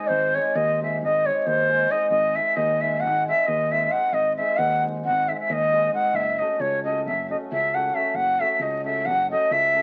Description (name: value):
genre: balkan folk, Balkan wedding band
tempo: 268 BPM (eighths)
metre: 9/8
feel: straight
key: G# phrygian dominant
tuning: A4 = 440 Hz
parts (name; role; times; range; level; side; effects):
- breathy bright ney; melody; 0.0-9.8 s; B#4 to F#5; -23 LUFS; equal; none
- hammered dulcimer; accompaniment; 0.0-9.8 s; G#3 to A4; -31 LUFS; equal; none
- fingered electric bass; bass; 0.1-9.8 s; F#1 to D#2; -35 LUFS; equal; none
room: moderate studio reverb, RT60 0.8 s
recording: very old 78 rpm record, vinyl crackle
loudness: -23 LUFS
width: mono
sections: 0.0-9.8 A section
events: none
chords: 0.0 G#; 6.1 F#m